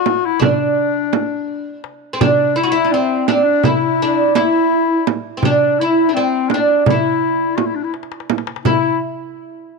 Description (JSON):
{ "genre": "Turkish makam ensemble", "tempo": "168 BPM (eighths)", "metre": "9/8", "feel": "straight", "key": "unclear", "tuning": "A4 = 440 Hz", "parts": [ { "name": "oud", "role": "melody", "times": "0.0-9.0 s", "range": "C4 to F#4-30c", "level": "-18 LUFS", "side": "right 5 dB", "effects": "none" }, { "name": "warm clarinet", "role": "second line", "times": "0.0-9.0 s", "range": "C4 to F#4-29c", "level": "-18 LUFS", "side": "left 14 dB", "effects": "none" }, { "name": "darbuka", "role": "percussion", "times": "0.1-9.0 s", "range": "none", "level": "-23 LUFS", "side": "left 7 dB", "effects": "none" }, { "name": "frame drum", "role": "percussion", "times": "0.1-9.0 s", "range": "none", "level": "-19 LUFS", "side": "right 13 dB", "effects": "none" } ], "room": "light reverb, small room ambience", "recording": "1960s-style stereo with parts hard left and right", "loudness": "-14 LUFS", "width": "side -3 dB against mid", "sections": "0.0-8.6 A section; 8.6-9.8 B section", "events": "drum fill 7.9-8.6", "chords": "none" }